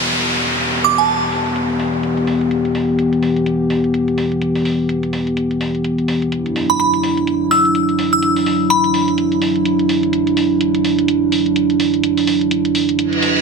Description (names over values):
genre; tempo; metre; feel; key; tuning
bass house; 126 BPM; 4/4; swing 58% on 16ths; E minor; A4 = 439 Hz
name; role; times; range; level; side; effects
dark analog pad; sustained chords; 0.0-13.4 s; E3 to G4; -16 LUFS; right 1 dB; chorus
electronic hi-hat; drums; 0.0-13.4 s; none; -26 LUFS; equal; low-pass filter on snare, low-pass filter on perc, low-pass filter on hats, low-pass filter on toms, low-pass filter on room
downlifter and reverse cymbal; sound effects; 0.0-2.5, 13.1-13.4 s; none; -20 LUFS; equal; none
glassy synth bell; melody; 0.8-1.3, 6.7-9.1 s; A5 to E6; -17 LUFS; right 1 dB; chorus, phaser, ping-pong delay
room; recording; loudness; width
moderate digital room reverb, RT60 1.3 s; dense, heavily limited modern master; -14 LUFS; side -4 dB against mid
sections
0.0-13.4 A section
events
reverse cymbal 13.1-13.4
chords
0.0 Em; 6.3 Dadd9